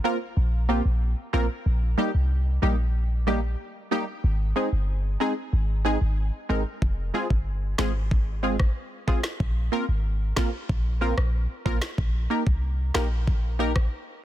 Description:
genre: dancehall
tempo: 93 BPM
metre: 4/4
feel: straight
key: unclear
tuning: A4 = 440 Hz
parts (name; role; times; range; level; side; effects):
- punchy chord stab; accompaniment; 0.0-13.7 s; G3 to Bb4; -28 LUFS; right 1 dB; chorus
- clean 808-style bass; bass; 0.4-13.9 s; F1 to C2; -24 LUFS; equal; none
- island pop drum kit; drums; 6.8-13.9 s; kick drum, rim click, snare drum; -26 LUFS; equal; none
room: digital ambience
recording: dense, heavily limited modern master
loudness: -23 LUFS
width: side -13 dB against mid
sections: 0.0-14.2 A section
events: none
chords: 0.0 Bbsus2; 1.7 Eb/Bb; 4.2 Ab; 6.8 Fm; 9.4 Bbsus2; 12.0 Eb/Bb

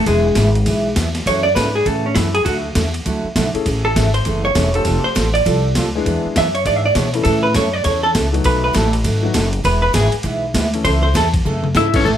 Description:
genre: country, western swing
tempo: 200 BPM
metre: 4/4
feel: swing 62% on 8ths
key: A major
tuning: A4 = 440 Hz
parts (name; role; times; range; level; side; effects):
- vintage hollow-body jazz guitar; second line; 0.0-12.1 s; G#3 to E5; -18 LUFS; right 1 dB; none
- upright bass; bass; 0.0-12.2 s; E1 to B2; -19 LUFS; left 1 dB; none
- picked steel-string acoustic guitar; accompaniment; 0.1-12.2 s; B2 to A4; -22 LUFS; right 3 dB; none
- boom bap sampler-style drum kit; drums; 0.1-12.1 s; crash cymbal, hi-hat, kick drum, ride cymbal, snare drum, toms; -22 LUFS; equal; overdrive
- clear upright piano; accompaniment; 3.5-12.0 s; E3 to A4; -23 LUFS; left 6 dB; none
- pedal steel guitar; melody; 11.8-12.1 s; A4 to E5; -17 LUFS; left 6 dB; none
room: light reverb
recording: none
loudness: -14 LUFS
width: side -10 dB against mid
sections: 0.0-12.1 A section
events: hollow-body jazz guitar solo 0.0-12.1; drum fill 11.5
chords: 0.1 Eadd9; 1.3 F#m7; 2.5 Dadd9; 3.7 Amaj7; 4.9 Fadd9; 6.1 E7; 7.3 A; 8.5 B7; 9.7 E; 10.9 A

